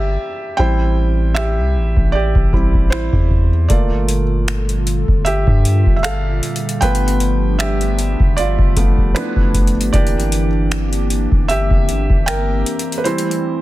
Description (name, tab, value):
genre	contemporary R&B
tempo	77 BPM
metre	4/4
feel	swing 54% on 16ths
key	G dorian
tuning	A4 = 440 Hz
part	felt-muted upright piano	accompaniment	0.0-13.6 s	E3 to G5	-20 LUFS	right 2 dB	none
part	long sustained 808-style bass	bass	0.0-12.6 s	G1 to G2	-17 LUFS	equal	none
part	booming analog drum machine	drums	1.4-13.4 s	finger snaps, hi-hat, kick drum	-17 LUFS	equal	overdrive, soft clipping on snare
part	hollow soft pad	sustained chords	4.0-13.6 s	Bb2 to A4	-24 LUFS	equal	chorus
room	digital ambience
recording	dense, heavily limited modern master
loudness	-14 LUFS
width	side -16 dB against mid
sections	0.0-13.6 A section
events	break 0.0-3.7; felt piano solo 0.0-13.6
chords	0.0 C9/G; 0.6 Am7; 3.7 Gm9; 6.8 G7; 9.9 C9/G; 13.1 Am7